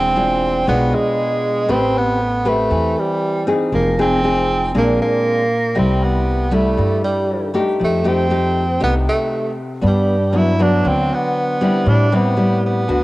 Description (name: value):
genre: bossa nova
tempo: 118 BPM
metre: 4/4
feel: straight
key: unclear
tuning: A4 = 437 Hz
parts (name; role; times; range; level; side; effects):
- breathy tenor saxophone; melody; 0.0-13.0 s; G3 to E4; -19 LUFS; right 2 dB; cassette tape
- nylon-string guitar; accompaniment; 0.0-13.0 s; G2 to B4; -18 LUFS; left 1 dB; cassette tape
- upright bass; bass; 0.0-13.0 s; E1 to A2; -20 LUFS; equal; none
room: moderate spring reverb, RT60 2.9 s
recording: home recording on cassette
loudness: -14 LUFS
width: side -18 dB against mid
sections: 0.0-13.0 A section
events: none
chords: 0.0 E7b9; 1.7 Am9; 3.7 Fm7; 4.7 Bb9; 5.8 C6; 7.8 F9; 9.8 Gmaj7; 11.9 Am7